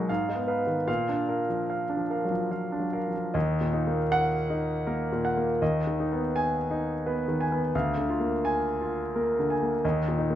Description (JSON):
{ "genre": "classical, romantic character piece for solo piano", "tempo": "71-89 BPM", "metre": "3/4", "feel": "rubato", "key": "Eb minor", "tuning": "A4 = 440 Hz", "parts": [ { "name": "warm concert grand piano", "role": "solo", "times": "0.0-10.4 s", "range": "D2 to Ab5", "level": "-25 LUFS", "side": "equal", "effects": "none" } ], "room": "moderate recital hall reverb, RT60 1.5 s", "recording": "none", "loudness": "-25 LUFS", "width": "side -11 dB against mid", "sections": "0.0-3.3 A section; 3.3-10.4 B section", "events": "none", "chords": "0.1 Fm7b5/Ab; 0.9 Bb; 3.3 Ebm; 5.6 Abm/Eb; 7.7 Bb7/D; 9.8 Eb5", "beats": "0.09 | 0.87 1.69 2.52 | 3.35 4.12 4.88 | 5.61 6.34 7.05 | 7.74 8.43 9.14 | 9.83" }